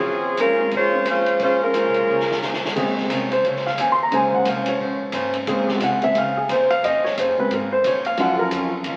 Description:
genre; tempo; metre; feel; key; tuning
jazz, big band swing; 177 BPM; 4/4; swing 62% on 8ths; Bb minor; A4 = 436 Hz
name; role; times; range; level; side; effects
dark saxophone section; melody; 0.0-2.6 s; F3 to Db5; -21 LUFS; equal; none
picked plugged-in swing-style acoustic guitar; accompaniment; 0.0-9.0 s; Eb3 to C5; -32 LUFS; equal; none
upright bass; bass; 0.0-9.0 s; Ab1 to Bb2; -40 LUFS; equal; none
swinging big-band drum kit; drums; 0.4-8.9 s; crash cymbal, hi-hat, kick drum, ride cymbal, snare drum; -32 LUFS; equal; none
warm grand piano; accompaniment; 0.6-8.7 s; Db3 to C6; -23 LUFS; equal; none
brilliant trombone section; sustained chords; 2.7-8.7 s; Db3 to C5; -32 LUFS; equal; none
room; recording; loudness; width
wet large studio reverb, RT60 1.5 s; very old 78 rpm record, vinyl crackle; -20 LUFS; mono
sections
0.0-2.8 A section; 2.8-9.0 B section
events
drum fill 2.1-2.8; grand piano solo 2.8-9.0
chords
0.0 Bbm9; 8.2 Ebm9

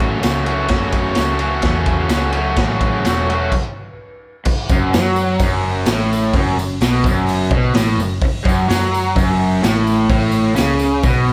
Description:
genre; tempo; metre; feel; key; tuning
garage rock duo or trio; 128 BPM; 4/4; straight; F# minor; A4 = 441 Hz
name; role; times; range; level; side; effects
raw garage guitar; riff; 0.0-11.3 s; F#2 to F#4; -19 LUFS; equal; overdrive
hollow-body short-scale picked electric bass; bass; 0.0-11.3 s; E1 to F#2; -23 LUFS; equal; none
raw garage drum kit; drums; 0.0-11.2 s; crash cymbal, hi-hat, kick drum, ride cymbal, snare drum; -22 LUFS; equal; none
tambourine; percussion; 0.2-11.3 s; none; -38 LUFS; equal; none
room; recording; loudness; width
moderate large studio reverb, RT60 1.2 s; band playing live in one room; -17 LUFS; mono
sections
0.0-4.5 A section; 4.5-11.3 B section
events
stop 3.5-4.5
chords
0.0 F#m

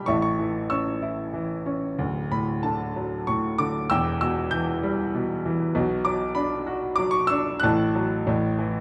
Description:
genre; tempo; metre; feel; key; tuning
classical, lyrical solo piano; 95 BPM; 3/4; uneven beats, rubato; D major; A4 = 441 Hz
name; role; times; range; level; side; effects
clear grand piano; solo; 0.0-8.8 s; D1 to G6; -25 LUFS; equal; none
room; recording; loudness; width
moderate recital hall reverb, RT60 1.3 s; dark, warm production; -25 LUFS; mono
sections
0.0-8.8 A section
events
none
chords
0.1 A; 2.0 D; 3.9 Em; 5.7 Bm; 7.6 F#m/A; 8.3 A5

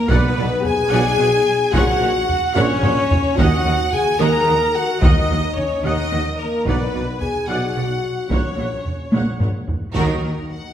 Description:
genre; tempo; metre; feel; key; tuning
cinematic, epic orchestral film score; 73 BPM (dotted quarters); 6/8; straight; unclear; A4 = 440 Hz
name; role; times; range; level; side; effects
bright chamber violin section; melody; 0.0-10.7 s; A#4 to A#5; -29 LUFS; left 2 dB; none
rich studio violin section; second line; 0.0-10.3 s; F#4 to A#5; -26 LUFS; left 1 dB; none
mellow French horn section; sustained chords; 0.0-10.7 s; F#3 to A#4; -22 LUFS; left 3 dB; none
mellow trumpet section; stabs; 0.0-9.1 s; A#4 to A#5; -26 LUFS; right 2 dB; none
rich symphonic viola section; accompaniment; 0.1-10.3 s; F#3 to F#5; -28 LUFS; right 1 dB; none
clear symphonic double bass section; bass; 0.1-10.3 s; A#1 to D#2; -27 LUFS; right 2 dB; none
mellow tuba; bass; 0.1-10.3 s; A#1 to D#2; -25 LUFS; right 2 dB; none
rich symphonic cello section; bass; 0.1-10.3 s; A#2 to D#3; -28 LUFS; right 3 dB; none
taiko ensemble; drums; 0.1-10.5 s; none; -21 LUFS; equal; none
room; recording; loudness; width
wet recital hall reverb, RT60 1.6 s; recorded in a church or concert hall; -16 LUFS; side -10 dB against mid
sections
0.0-9.9 A section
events
drum fill 2.6-3.4, 9.1-9.9; band accent 9.9-10.5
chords
0.1 Bm; 1.7 F#/A#; 3.4 D#m; 6.7 Bm; 8.3 F#/A#; 9.9 D#m

